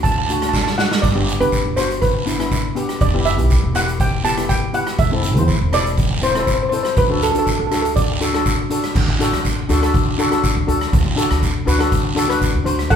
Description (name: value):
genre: calypso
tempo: 121 BPM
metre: 4/4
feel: straight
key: unclear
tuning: A4 = 440 Hz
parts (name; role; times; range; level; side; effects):
- steel pan; melody; 0.0-8.1, 12.9-13.0 s; A4 to A5; -20 LUFS; right 2 dB; none
- steel pan; accompaniment; 0.0-12.9 s; A3 to C5; -21 LUFS; left 2 dB; none
- upright bass; bass; 0.0-13.0 s; E1 to E2; -21 LUFS; equal; none
- street-band drum kit; drums; 0.0-13.0 s; crash cymbal, hi-hat, kick drum, rim click, snare drum, splash cymbal; -20 LUFS; equal; none
- guiro; percussion; 0.0-13.0 s; none; -28 LUFS; right 3 dB; none
room: moderate large studio reverb, RT60 0.8 s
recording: band playing live in one room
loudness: -15 LUFS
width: side -8 dB against mid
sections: 0.0-9.0 A section; 9.0-12.9 B section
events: steel pan solo 0.0-9.0; drum fill 0.5-1.0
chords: 0.0 D; 1.0 G; 3.0 Em; 5.0 Am/E; 7.0 D